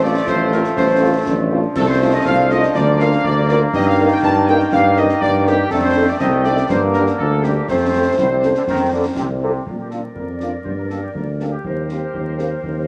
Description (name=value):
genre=military-style march for wind band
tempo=121 BPM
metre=2/4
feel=straight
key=Bb major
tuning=A4 = 440 Hz
part: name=dark trumpet section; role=melody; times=0.0-12.9 s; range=F4 to A5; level=-28 LUFS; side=equal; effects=none
part: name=clear woodwind section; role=second line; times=0.0-12.9 s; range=G4 to A5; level=-24 LUFS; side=equal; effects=none
part: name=warm euphonium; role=second line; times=0.0-9.4 s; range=A3 to F4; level=-26 LUFS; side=equal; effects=none
part: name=dark French horn section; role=accompaniment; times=0.0-12.5 s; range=G3 to Bb4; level=-26 LUFS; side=equal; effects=none
part: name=clear trombone section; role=sustained chords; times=0.0-9.6 s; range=A2 to Bb3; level=-24 LUFS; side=equal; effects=none
part: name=warm tuba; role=bass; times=0.0-12.9 s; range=A1 to Bb2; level=-22 LUFS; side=equal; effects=none
part: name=concert snare drum, concert bass drum and clash cymbals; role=drums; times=0.3-12.8 s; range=none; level=-28 LUFS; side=equal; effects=none
room=moderate plate reverb, RT60 3.0 s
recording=vinyl crackle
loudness=-17 LUFS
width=mono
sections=0.0-9.7 A section; 9.7-12.9 B section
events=none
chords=0.0 F/A; 1.8 F7/C; 2.7 Bb/D; 3.7 Eb/G; 4.7 Cm7/G; 5.7 F7; 6.7 Gm; 7.7 F; 9.7 Bb; 10.7 Gm; 11.6 Cm7/Eb